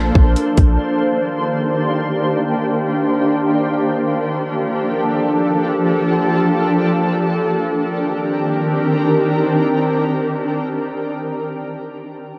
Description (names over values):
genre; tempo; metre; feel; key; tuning
hip hop, atmospheric cloud-rap; free time; none; none; C dorian; A4 = 438 Hz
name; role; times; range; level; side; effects
shimmering ambient pad; sustained chords; 0.0-11.7 s; Eb3 to C5; -18 LUFS; equal; chorus, built-in reverb, sidechain pumping
warm 808-style bass; bass; 0.0-0.8 s; Bb1; -18 LUFS; equal; none
trap drum kit; drums; 0.1-0.7 s; hi-hat, kick drum; -16 LUFS; equal; none
room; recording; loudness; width
moderate lush hall reverb, RT60 2.0 s, digital ambience; worn, warbling old tape, cassette tape, warbly pitch drift; -18 LUFS; mono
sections
0.0-7.5 A section; 7.5-10.9 B section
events
none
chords
0.0 Bbmaj9; 0.8 Cm9; 4.2 Gm9; 7.5 Cm9